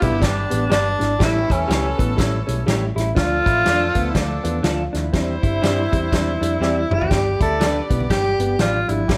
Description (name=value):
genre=uptempo 1960s-style soul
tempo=122 BPM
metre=4/4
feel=swing 60% on 8ths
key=G mixolydian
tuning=A4 = 440 Hz
part: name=warm tenor saxophone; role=melody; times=0.0-9.2 s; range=C#4 to A4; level=-24 LUFS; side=equal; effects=slapback echo
part: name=edgy saxophone section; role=second line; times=0.0-9.2 s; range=D3 to D5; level=-33 LUFS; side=equal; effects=none
part: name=dark upright piano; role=accompaniment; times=0.0-9.2 s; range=F3 to G4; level=-30 LUFS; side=equal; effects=none
part: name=electric guitar through a small old amp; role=riff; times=0.0-9.2 s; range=B3 to G4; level=-30 LUFS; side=equal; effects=none
part: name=vintage muted picked electric bass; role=bass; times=0.0-9.2 s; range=F#1 to G2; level=-26 LUFS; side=equal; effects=none
part: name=natural country drum kit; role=drums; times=0.0-9.2 s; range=hi-hat, kick drum, snare drum, toms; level=-24 LUFS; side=equal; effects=none
part: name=electric guitar through a small old amp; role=stabs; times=0.7-8.8 s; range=A3 to D5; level=-29 LUFS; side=equal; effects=subtle chorus
part: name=congas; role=percussion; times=7.1-9.2 s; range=none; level=-33 LUFS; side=equal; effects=none
room=moderate large studio reverb, RT60 0.8 s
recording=vinyl crackle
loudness=-19 LUFS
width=mono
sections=0.0-9.2 A section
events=drum fill 6.6-7.1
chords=0.0 G; 1.2 A7; 3.2 Dm; 5.1 Cadd9; 7.1 G